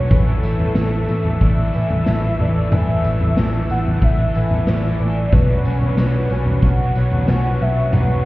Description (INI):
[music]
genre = dream pop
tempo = 92 BPM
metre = 4/4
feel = straight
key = unclear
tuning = A4 = 440 Hz
[part]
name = warm velvety synth lead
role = melody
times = 0.0-8.3 s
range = A4 to F#5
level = -26 LUFS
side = equal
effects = chorus, tremolo, ping-pong delay
[part]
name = overdriven electric guitar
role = accompaniment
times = 0.0-8.3 s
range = A2 to A4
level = -30 LUFS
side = right 1 dB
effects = harmonic tremolo, ensemble chorus
[part]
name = lush unison pad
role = sustained chords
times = 0.0-8.3 s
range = A4 to E6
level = -31 LUFS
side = equal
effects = chorus
[part]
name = fingerpicked twelve-string acoustic guitar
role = arpeggios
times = 0.0-8.3 s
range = E3 to D4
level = -28 LUFS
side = left 1 dB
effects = lush chorus, ping-pong delay
[part]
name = vintage muted picked electric bass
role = bass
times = 0.0-8.2 s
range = A1 to B1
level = -19 LUFS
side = equal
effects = none
[part]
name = raw garage drum kit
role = drums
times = 0.1-8.1 s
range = kick drum, snare drum, tambourine, toms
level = -19 LUFS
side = equal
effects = none
[sound]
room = light reverb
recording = heard muffled through a wall, stone room reverb, EQ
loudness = -15 LUFS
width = side -18 dB against mid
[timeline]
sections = 0.0-8.3 A section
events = none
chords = 0.1 Asus4; 5.3 Bmadd9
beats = | 0.11 0.76 1.41 2.06 | 2.72 3.37 4.02 4.67 | 5.33 5.98 6.63 7.28 | 7.93